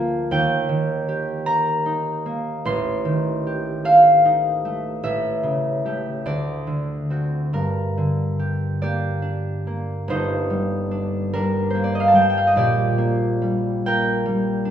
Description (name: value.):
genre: classical, solo harp piece.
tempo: 45-53 BPM (dotted quarters).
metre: 6/8.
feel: rubato.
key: G minor.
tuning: A4 = 440 Hz.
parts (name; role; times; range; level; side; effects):
concert harp; solo; 0.0-14.7 s; G1 to C6; -19 LUFS; equal; none.
room: wet recital hall reverb, RT60 1.5 s.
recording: heard from further back in the room.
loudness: -19 LUFS.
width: side -9 dB against mid.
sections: 0.0-10.1 A section; 10.1-14.7 A section.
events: none.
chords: 0.3 Eb; 2.7 Am7b5; 5.0 A7; 6.3 D7; 7.5 Gm; 12.6 Gm/Bb.